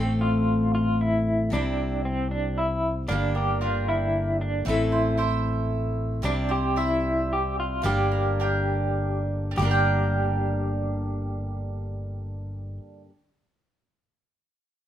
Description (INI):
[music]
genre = acoustic folk duo or small band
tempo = 98-115 BPM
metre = 3/4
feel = straight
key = G dorian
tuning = A4 = 440 Hz
[part]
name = electric guitar through a small old amp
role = melody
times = 0.0-12.8 s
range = C4 to G4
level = -28 LUFS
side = equal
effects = tremolo
[part]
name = picked steel-string acoustic guitar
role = accompaniment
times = 0.0-13.1 s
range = G2 to A4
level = -29 LUFS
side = left 2 dB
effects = none
[part]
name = fretless electric bass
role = bass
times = 0.0-12.8 s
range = G1 to C2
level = -28 LUFS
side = equal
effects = none
[part]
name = mandolin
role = arpeggios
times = 3.1-13.2 s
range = G3 to G5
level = -31 LUFS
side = right 5 dB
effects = none
[sound]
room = light reverb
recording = minimal, uncompressed stereo recording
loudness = -23 LUFS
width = side -11 dB against mid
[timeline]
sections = 0.0-9.6 A section; 9.6-13.3 B section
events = slowing down 6.2-9.6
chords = 0.0 Am; 1.5 C; 3.1 Gm; 4.7 Am; 6.2 C; 7.8 Gm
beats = 0.47 0.99 | 1.52 2.04 2.57 | 3.09 3.62 4.14 | 4.66 5.19 5.71 | 6.23 6.76 7.29 | 7.84 8.39 8.97 | 9.57 10.19 10.80 | 11.41 12.03 12.64